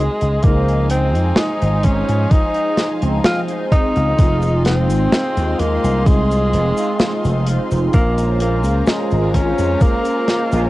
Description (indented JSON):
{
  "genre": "vaporwave",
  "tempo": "64 BPM",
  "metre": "4/4",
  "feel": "straight",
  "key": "Db major",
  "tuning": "A4 = 440 Hz",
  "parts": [
    { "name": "breathy tenor saxophone", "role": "melody", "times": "0.0-10.7 s", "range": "Ab3 to F4", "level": "-20 LUFS", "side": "equal", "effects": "tape echo" },
    { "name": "rich symphonic string section", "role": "sustained chords", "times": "0.0-10.7 s", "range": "Ab4 to C6", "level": "-30 LUFS", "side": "left 2 dB", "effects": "none" },
    { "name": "vintage slap bass", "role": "bass", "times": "0.0-10.7 s", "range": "F1 to Ab2", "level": "-17 LUFS", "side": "equal", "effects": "none" },
    { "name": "modern studio drum kit", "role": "drums", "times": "0.2-10.7 s", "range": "cabasa, hi-hat, snare drum", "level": "-21 LUFS", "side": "equal", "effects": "vintage 12-bit sampler grit" },
    { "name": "mellow synth brass", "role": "accompaniment", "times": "0.4-10.7 s", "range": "F3 to C5", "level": "-22 LUFS", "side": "equal", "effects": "phaser, lush chorus, tape echo" },
    { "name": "electronic kick drum", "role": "drums", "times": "0.4-10.0 s", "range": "none", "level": "-14 LUFS", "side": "equal", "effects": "overdrive, vintage 12-bit sampler grit" }
  ],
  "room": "light reverb, studio reverb",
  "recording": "worn, warbling old tape, cassette tape, warbly pitch drift",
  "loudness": "-14 LUFS",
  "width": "side -17 dB against mid",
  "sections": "0.0-10.7 A section",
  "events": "none",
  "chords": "0.0 Dbmaj9; 4.2 Fm7; 7.9 Bbm7",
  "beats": "| 0.44 1.38 2.31 3.25 | 4.19 5.13 6.06 7.00 | 7.94 8.88 9.81"
}